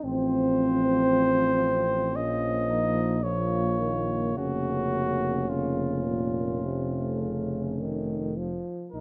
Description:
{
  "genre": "classical, hymn-like piece for brass band",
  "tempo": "51-58 BPM",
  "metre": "4/4",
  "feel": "rubato",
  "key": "Bb minor",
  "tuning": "A4 = 440 Hz",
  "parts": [
    { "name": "dark French horn section", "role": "second line", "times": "0.0-8.6 s", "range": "A3 to C4", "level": "-33 LUFS", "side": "equal", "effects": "none" },
    { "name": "clear euphonium", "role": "accompaniment", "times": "0.0-9.0 s", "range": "C4 to F4", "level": "-35 LUFS", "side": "equal", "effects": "none" },
    { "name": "warm trombone", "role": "accompaniment", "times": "0.0-8.9 s", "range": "Bb2 to F3", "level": "-35 LUFS", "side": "equal", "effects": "none" },
    { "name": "mellow tuba", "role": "bass", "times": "0.0-9.0 s", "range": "F1 to Bb1", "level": "-34 LUFS", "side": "equal", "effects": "none" },
    { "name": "warm flugelhorn", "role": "melody", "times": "0.1-9.0 s", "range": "F4 to Eb5", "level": "-31 LUFS", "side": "equal", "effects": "none" }
  ],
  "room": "light reverb",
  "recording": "close, detailed microphones",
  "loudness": "-27 LUFS",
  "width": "mono",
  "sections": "0.0-9.0 A section",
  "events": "none",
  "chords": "0.0 F/A; 2.2 Bbm; 4.4 Bbm/F; 6.6 F"
}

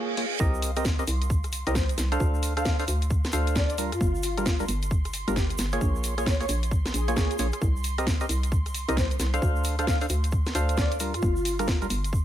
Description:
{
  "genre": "UK garage, two-step garage",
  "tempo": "133 BPM",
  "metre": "4/4",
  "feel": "swing 62% on 16ths",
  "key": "unclear",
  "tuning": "A4 = 440 Hz",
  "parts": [
    { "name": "breathy flute-like synth lead", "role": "melody", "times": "0.0-11.8 s", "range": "F4 to F5", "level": "-34 LUFS", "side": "left 1 dB", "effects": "ensemble chorus, tape echo" },
    { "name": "airy breathy pad", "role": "sustained chords", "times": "0.0-12.2 s", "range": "F4 to C6", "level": "-40 LUFS", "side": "right 3 dB", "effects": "chorus, sidechain pumping" },
    { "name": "percussive organ stab", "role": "stabs", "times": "0.0-11.9 s", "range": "G3 to F5", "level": "-31 LUFS", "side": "right 1 dB", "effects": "chorus, tape echo" },
    { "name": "garage drum kit", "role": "drums", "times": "0.2-12.1 s", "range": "hi-hat, rim click, snare drum", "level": "-32 LUFS", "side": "equal", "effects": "none" },
    { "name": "hollow knocking FM bass", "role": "bass", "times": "0.4-12.2 s", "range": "G1 to G2", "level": "-28 LUFS", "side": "equal", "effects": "none" },
    { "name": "electronic kick drum", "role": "drums", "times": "0.4-12.2 s", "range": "none", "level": "-26 LUFS", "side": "equal", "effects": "none" },
    { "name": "tube shaker", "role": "percussion", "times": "0.4-12.2 s", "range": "none", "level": "-40 LUFS", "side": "right 3 dB", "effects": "none" }
  ],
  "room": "digital ambience",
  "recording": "none",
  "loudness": "-23 LUFS",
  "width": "side -12 dB against mid",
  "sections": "0.4-12.2 A section",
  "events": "drop 0.4-12.2",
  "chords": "0.4 Cm7; 2.2 Dm7; 3.8 Gm7; 5.8 Bbm7; 7.6 Cm7; 9.4 Dm7; 11.0 Gm7"
}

